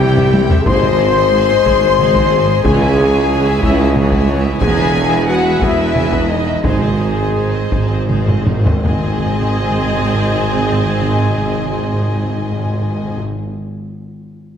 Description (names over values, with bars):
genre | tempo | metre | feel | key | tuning
cinematic, epic orchestral film score | 52-61 BPM (dotted quarters) | 6/8 | straight | Ab major | A4 = 440 Hz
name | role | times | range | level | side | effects
warm symphonic violin section | melody | 0.0-13.2 s | C5 to G#5 | -28 LUFS | left 4 dB | none
bright large flute ensemble | second line | 0.0-13.2 s | Ab4 to C6 | -24 LUFS | left 1 dB | none
dark symphonic violin section | second line | 0.0-13.2 s | Ab4 to C6 | -26 LUFS | left 3 dB | none
rich symphonic viola section | accompaniment | 0.0-13.2 s | E3 to C5 | -24 LUFS | right 1 dB | none
mellow French horn section | sustained chords | 0.0-13.2 s | Ab3 to C5 | -18 LUFS | left 6 dB | none
warm woodwind section | sustained chords | 0.0-13.2 s | Fb3 to Ab5 | -26 LUFS | left 1 dB | none
rich studio cello section | bass | 0.0-13.2 s | Db2 to C3 | -21 LUFS | right 2 dB | none
rich symphonic double bass section | bass | 0.0-13.2 s | E1 to Db2 | -22 LUFS | right 3 dB | none
warm tuba | bass | 0.0-13.2 s | E1 to Db2 | -21 LUFS | right 3 dB | none
taiko ensemble | drums | 0.0-9.0 s | none | -18 LUFS | equal | none
timpani | percussion | 0.7-1.6, 6.6-13.2 s | Ab2 | -21 LUFS | left 1 dB | none
room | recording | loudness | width
wet scoring stage reverb, RT60 1.8 s | none | -12 LUFS | side -8 dB against mid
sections
0.0-8.8 A section; 8.8-13.5 B section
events
drum fill 0.2-0.7, 8.3-8.8; slowing down 3.6-8.8; timpani fill 6.6-8.8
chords
0.0 C; 0.7 Ab; 2.6 Dbm; 4.6 E; 6.6 Ab